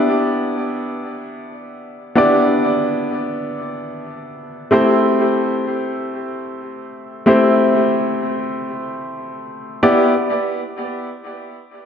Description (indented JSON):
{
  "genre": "pop",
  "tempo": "free time",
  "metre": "none",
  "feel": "none",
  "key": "E minor",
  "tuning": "A4 = 439 Hz",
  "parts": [
    { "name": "clear baby grand piano", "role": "solo", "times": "0.0-10.1 s", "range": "A3 to D5", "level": "-16 LUFS", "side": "equal", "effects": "diffuse ambient delay" }
  ],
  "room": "wet plate reverb, RT60 2.4 s",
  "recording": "dreamy mix soaked in reverb",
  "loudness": "-15 LUFS",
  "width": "side -7 dB against mid",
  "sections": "0.0-9.8 A section; 9.8-11.9 B section",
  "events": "none",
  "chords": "0.0 Em7; 4.7 Am7; 9.8 Em7"
}